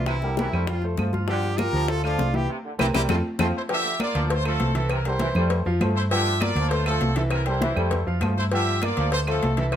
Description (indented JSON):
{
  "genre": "latin, salsa",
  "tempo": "199 BPM",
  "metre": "4/4",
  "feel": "straight",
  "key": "F major",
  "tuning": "A4 = 440 Hz",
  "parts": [
    { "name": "brilliant horn section", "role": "melody", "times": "0.0-3.5 s", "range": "A3 to Bb4", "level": "-29 LUFS", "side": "equal", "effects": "none" },
    { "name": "clear baby grand piano", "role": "accompaniment", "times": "0.0-9.8 s", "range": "E3 to G5", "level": "-29 LUFS", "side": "equal", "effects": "none" },
    { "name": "hollow-body short-scale fingered electric bass", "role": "bass", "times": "0.0-9.8 s", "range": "C2 to G2", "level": "-25 LUFS", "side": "equal", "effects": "none" },
    { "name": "bright trombone section", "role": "second line", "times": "0.1-9.8 s", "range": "C3 to G3", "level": "-32 LUFS", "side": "equal", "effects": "none" },
    { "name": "bongos and cowbell", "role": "percussion", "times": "0.1-9.8 s", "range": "none", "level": "-32 LUFS", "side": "left 5 dB", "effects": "none" },
    { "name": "claves", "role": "percussion", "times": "0.1-9.8 s", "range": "none", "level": "-34 LUFS", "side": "right 3 dB", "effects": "none" },
    { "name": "congas", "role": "percussion", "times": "0.1-9.8 s", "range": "none", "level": "-31 LUFS", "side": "left 1 dB", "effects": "none" },
    { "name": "bright trumpet section", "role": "melody", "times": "3.6-9.8 s", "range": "C4 to E5", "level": "-27 LUFS", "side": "equal", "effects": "none" }
  ],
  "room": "moderate studio reverb, RT60 0.8 s",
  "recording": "none",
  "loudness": "-21 LUFS",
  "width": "side -10 dB against mid",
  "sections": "0.0-3.7 A section; 3.7-9.8 B section",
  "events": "band accent 2.5-3.7; drum fill 3.2-3.7",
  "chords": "0.1 C7; 0.7 F; 1.3 Gm7; 1.9 Dm7; 2.5 C7; 3.1 F; 3.7 Gm7; 4.3 Dm7; 4.9 C7; 5.5 F; 6.1 Gm7; 6.7 Dm7; 7.3 C7; 7.9 F; 8.5 Gm7; 9.1 Dm7"
}